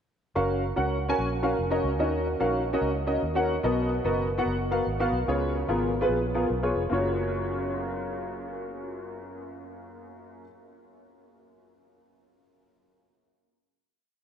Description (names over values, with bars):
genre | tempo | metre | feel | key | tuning
uptempo gospel | 146 BPM | 4/4 | swing 61% on 8ths | F# major | A4 = 441 Hz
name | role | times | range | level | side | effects
warm upright piano | accompaniment | 0.4-10.5 s | F#2 to G#5 | -26 LUFS | equal | analog chorus
fingered electric bass | bass | 0.4-10.4 s | E#1 to D#2 | -32 LUFS | equal | none
room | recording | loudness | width
wet huge ambient reverb, RT60 6.8 s | dreamy mix soaked in reverb | -25 LUFS | side -8 dB against mid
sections
0.4-6.9 breakdown; 6.9-10.2 final chord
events
none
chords
0.4 F#maj7; 2.0 D#m7; 3.6 Bmaj7; 5.3 C#7; 6.9 F#maj7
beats
| 0.36 0.77 1.18 1.59 | 2.00 2.41 2.82 3.23 | 3.64 4.05 4.46 4.87 | 5.28 5.69 6.10 6.51 | 6.92 7.33 7.73 8.14 | 8.55 8.96 9.37 9.78